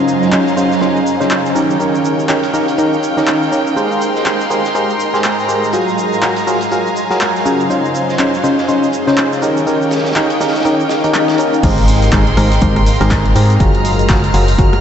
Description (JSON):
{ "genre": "piano house", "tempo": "122 BPM", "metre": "4/4", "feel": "swing 59% on 16ths", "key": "Ab major", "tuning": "A4 = 440 Hz", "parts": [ { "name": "clear studio violin section", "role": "sustained chords", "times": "0.0-14.8 s", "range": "Ab3 to F6", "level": "-21 LUFS", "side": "right 1 dB", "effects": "sidechain pumping" }, { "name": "barking FM electric piano", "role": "riff", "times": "0.0-14.8 s", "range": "Ab2 to C5", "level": "-15 LUFS", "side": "equal", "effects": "chorus, sidechain pumping, low-pass filter, analog delay" }, { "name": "granular cloud pad", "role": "texture", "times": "0.0-14.8 s", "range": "Gb3 to C6", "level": "-19 LUFS", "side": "equal", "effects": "built-in reverb, analog chorus, sidechain pumping" }, { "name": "big rock drum kit", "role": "drums", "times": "0.1-14.7 s", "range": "hi-hat, shaker, snare drum", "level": "-30 LUFS", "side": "right 1 dB", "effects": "none" }, { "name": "punchy analog drum machine", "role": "drums", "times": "0.1-14.8 s", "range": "cabasa, crash cymbal, handclaps, hi-hat, rim click", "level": "-22 LUFS", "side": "equal", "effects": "overdrive" }, { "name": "organ-like FM bass", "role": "bass", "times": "11.6-14.8 s", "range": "Gb1 to Ab2", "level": "-14 LUFS", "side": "equal", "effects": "sidechain pumping" }, { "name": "electronic kick drum", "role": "drums", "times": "11.6-14.7 s", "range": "none", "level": "-15 LUFS", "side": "equal", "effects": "overdrive" } ], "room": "wet huge ambient reverb, RT60 4.8 s", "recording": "dreamy mix soaked in reverb, nothing above 8.0 kHz", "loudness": "-11 LUFS", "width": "side -8 dB against mid", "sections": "0.0-11.6 A section; 11.6-14.8 B section", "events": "drop 11.6-14.8", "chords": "0.0 Dbmaj9; 1.6 Eb7; 3.8 Abmaj9; 5.7 Gbmaj9; 7.7 Dbmaj9; 9.4 Eb7; 11.6 Abmaj9; 13.6 Gbmaj9", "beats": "0.32 0.81 1.31 | 1.80 2.29 2.78 3.27 | 3.77 4.26 4.75 5.24 | 5.73 6.22 6.72 7.21 | 7.70 8.19 8.68 9.18 | 9.67 10.16 10.65 11.14 | 11.63 12.13 12.62 13.11 | 13.60 14.09 14.59" }